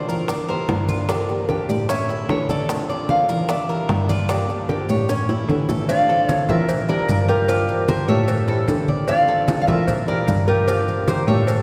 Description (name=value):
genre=latin, Cuban son and guajira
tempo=150 BPM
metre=4/4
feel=straight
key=D minor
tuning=A4 = 440 Hz
part: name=nylon-string guitar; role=melody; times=0.0-11.6 s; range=Bb4 to F5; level=-25 LUFS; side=equal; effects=none
part: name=fingerpicked swing-style acoustic guitar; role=accompaniment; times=0.0-11.5 s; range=D3 to G4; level=-30 LUFS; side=equal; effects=none
part: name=Cuban tres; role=arpeggios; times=0.0-11.6 s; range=C#4 to E5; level=-31 LUFS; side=equal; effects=none
part: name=clear cello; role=bass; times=0.0-11.6 s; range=G2 to E3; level=-25 LUFS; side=equal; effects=none
part: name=congas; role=percussion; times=0.1-11.6 s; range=none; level=-29 LUFS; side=equal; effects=none
part: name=maracas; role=percussion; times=0.1-11.6 s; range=none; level=-44 LUFS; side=equal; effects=none
part: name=bongos and cowbell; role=percussion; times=0.3-11.6 s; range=none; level=-31 LUFS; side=equal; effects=none
part: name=jazz flute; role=second line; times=5.9-11.6 s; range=G4 to D5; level=-30 LUFS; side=equal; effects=none
room=wet cathedral reverb, RT60 4.6 s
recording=recorded in a church or concert hall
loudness=-20 LUFS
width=mono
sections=0.0-5.9 A section; 5.9-11.6 B section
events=drum fill 5.1-5.9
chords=0.3 Em7b5; 1.1 Gm7; 1.9 A7; 2.7 Dm7; 3.5 Em7b5; 4.3 Gm7; 5.1 A7; 5.9 Dm7; 6.7 Em7b5; 7.5 Gm7; 8.3 A7; 9.1 Dm7; 9.9 Em7b5; 10.7 Gm7